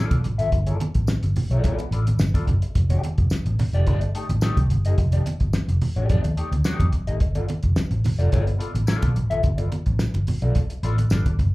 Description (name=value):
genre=funk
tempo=108 BPM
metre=4/4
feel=straight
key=unclear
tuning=A4 = 440 Hz
part: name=mellow electric guitar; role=accompaniment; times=0.0-11.4 s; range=A3 to E5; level=-30 LUFS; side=left 3 dB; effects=wah, slapback echo
part: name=vintage muted fingered electric bass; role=bass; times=0.1-11.5 s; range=F1 to F2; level=-22 LUFS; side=equal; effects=none
part: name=cloth-damped thuddy drum kit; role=drums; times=0.1-11.5 s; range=hi-hat, kick drum, snare drum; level=-24 LUFS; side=equal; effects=none
part: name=congas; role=percussion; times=0.1-11.5 s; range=none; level=-28 LUFS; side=right 2 dB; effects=none
part: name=tambourine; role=percussion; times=1.1-11.2 s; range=none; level=-41 LUFS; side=left 4 dB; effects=none
room=little or no reverb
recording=live gig heard through the venue's PA, club reverb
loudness=-19 LUFS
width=side -20 dB against mid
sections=0.0-11.5 A section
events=none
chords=0.0 G9; 2.8 F13; 7.2 G9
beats=| 0.52 1.08 1.64 2.19 | 2.75 3.31 3.87 4.42 | 4.98 5.54 6.09 6.65 | 7.21 7.77 8.32 8.88 | 9.44 9.99 10.55 11.11